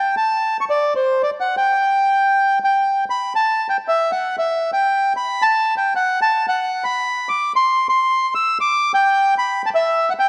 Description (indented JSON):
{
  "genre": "tango",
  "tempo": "171 BPM",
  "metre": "3/4",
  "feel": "rubato",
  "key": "G major",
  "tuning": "A4 = 441 Hz",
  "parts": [
    { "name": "bandoneon", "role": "solo", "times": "0.0-10.3 s", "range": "C5 to E6", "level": "-18 LUFS", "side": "equal", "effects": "none" }
  ],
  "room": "moderate concert hall reverb, RT60 2.2 s",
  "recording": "dark, warm production",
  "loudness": "-18 LUFS",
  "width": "mono",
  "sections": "0.0-2.8 A section; 2.8-10.3 B section",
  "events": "none",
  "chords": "none"
}